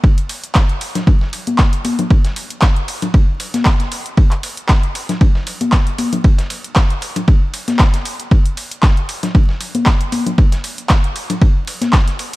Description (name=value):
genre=house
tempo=116 BPM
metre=4/4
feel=swing 55% on 16ths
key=none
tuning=none
part: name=dusty soul sampler-style drum kit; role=drums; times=0.0-12.3 s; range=ride cymbal, snare drum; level=-30 LUFS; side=right 3 dB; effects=sidechain pumping on cymbals, high-pass filter on cymbals, high-pass filter on snare
part: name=electronic kick drum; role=drums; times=0.0-12.0 s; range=none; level=-11 LUFS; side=equal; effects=overdrive
part: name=punchy analog drum machine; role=drums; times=0.2-12.4 s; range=handclaps, hi-hat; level=-22 LUFS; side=equal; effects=none
part: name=congas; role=percussion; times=1.0-11.9 s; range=none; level=-21 LUFS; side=left 3 dB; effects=none
room=little or no reverb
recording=dark, warm production, vinyl crackle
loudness=-13 LUFS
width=side -19 dB against mid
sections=0.0-12.4 A section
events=none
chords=none